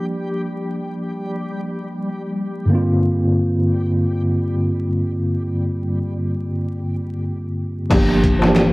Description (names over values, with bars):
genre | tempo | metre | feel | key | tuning
trip hop | free time | none | none | unclear | A4 = 441 Hz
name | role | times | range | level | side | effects
bright tine electric piano | accompaniment | 0.0-8.7 s | G2 to G4 | -19 LUFS | equal | medium stereo tremolo, cassette tape
backwards swelling texture | texture | 0.0-7.9 s | G3 to G4 | -32 LUFS | left 1 dB | built-in reverb, cassette tape
upright bass | bass | 7.9-8.7 s | G1 | -21 LUFS | equal | none
trip hop sampler-style drum kit | drums | 7.9-8.7 s | crash cymbal, hi-hat, kick drum, snare drum | -17 LUFS | equal | overdrive, cassette tape
darbuka | percussion | 7.9-8.7 s | none | -25 LUFS | left 2 dB | none
impact | sound effects | 8.1-8.7 s | none | barely audible | none | none
room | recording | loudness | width
little or no reverb | home recording on cassette, vinyl crackle | -18 LUFS | side -22 dB against mid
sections
0.0-7.9 A section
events
impact 7.9-8.7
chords
0.0 Gm7; 2.7 Bbadd9/G; 7.9 Gm7